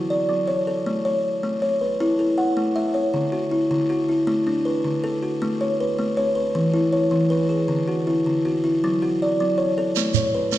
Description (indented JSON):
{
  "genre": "southern african traditional, mbira-style interlocking cycle",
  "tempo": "106 BPM (dotted quarters)",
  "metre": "12/8",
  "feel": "straight",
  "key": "A major",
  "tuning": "A4 = 439 Hz",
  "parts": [
    { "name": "buzzing kalimba", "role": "arpeggios", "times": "0.0-10.6 s", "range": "D3 to F#5", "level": "-19 LUFS", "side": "equal", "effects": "none" },
    { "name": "shekere", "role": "percussion", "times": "10.0-10.6 s", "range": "none", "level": "-23 LUFS", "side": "right 12 dB", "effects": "none" }
  ],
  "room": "moderate recital hall reverb, RT60 1.4 s",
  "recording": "dark, warm production",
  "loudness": "-19 LUFS",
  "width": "side -14 dB against mid",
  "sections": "0.0-10.0 A section",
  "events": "none",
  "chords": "0.0 F#m; 0.9 A; 3.1 D; 5.4 A; 6.6 E; 7.7 D; 8.8 F#m; 10.0 A",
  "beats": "0.29 | 0.86 1.43 2.00 2.57 | 3.14 3.71 4.28 4.85 | 5.42 5.99 6.56 7.12 | 7.69 8.26 8.83 9.39 | 9.96 10.53"
}